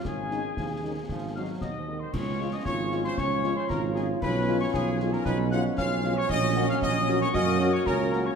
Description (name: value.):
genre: military-style march for wind band.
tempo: 115 BPM.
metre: 2/4.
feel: straight.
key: Db major.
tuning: A4 = 437 Hz.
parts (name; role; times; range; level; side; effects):
clear trumpet section; melody; 0.0-8.4 s; Ab4 to Gb5; -34 LUFS; right 1 dB; none.
mellow piccolo; second line; 0.0-8.3 s; Ab5 to Gb6; -34 LUFS; left 5 dB; none.
mellow woodwind section; second line; 0.0-8.3 s; F4 to Db5; -36 LUFS; left 2 dB; none.
concert snare drum, concert bass drum and clash cymbals; drums; 0.0-8.2 s; none; -36 LUFS; left 1 dB; none.
warm trombone section; sustained chords; 0.1-8.3 s; Eb3 to Db4; -34 LUFS; right 1 dB; none.
dark tuba; bass; 0.1-8.3 s; Ab1 to Gb2; -29 LUFS; right 4 dB; none.
mellow French horn section; accompaniment; 0.3-8.2 s; Ab3 to Gb4; -35 LUFS; left 6 dB; none.
clear euphonium; second line; 2.7-8.3 s; Db4 to Gb4; -31 LUFS; right 2 dB; none.
room: wet scoring stage reverb, RT60 2.0 s.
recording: none.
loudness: -24 LUFS.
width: side -6 dB against mid.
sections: 0.0-2.1 A section; 2.1-8.4 B section.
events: none.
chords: 0.0 Absus4; 1.1 Ab; 2.1 Db; 4.2 Db7/Cb; 6.3 Gb/Bb; 7.3 Gb.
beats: | 0.05 0.57 | 1.09 1.61 | 2.13 2.65 | 3.18 3.70 | 4.22 4.74 | 5.26 5.78 | 6.30 6.82 | 7.34 7.86.